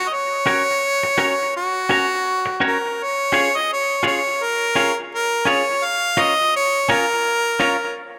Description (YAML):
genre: reggae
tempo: 84 BPM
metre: 4/4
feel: swing 58% on 16ths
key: unclear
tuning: A4 = 442 Hz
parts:
  - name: clear harmonica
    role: melody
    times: 0.0-8.0 s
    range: F#4 to E#5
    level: -21 LUFS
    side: equal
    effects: dub echo
  - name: semi-hollow electric guitar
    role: accompaniment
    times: 0.5-7.8 s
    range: C#4 to C#5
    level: -24 LUFS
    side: equal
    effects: spring reverb, dub echo
room: light reverb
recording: rough home demo mix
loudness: -19 LUFS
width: mono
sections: 0.0-3.0 A section; 3.0-8.2 B section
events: none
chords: 0.0 F#; 3.0 C#; 5.8 A#m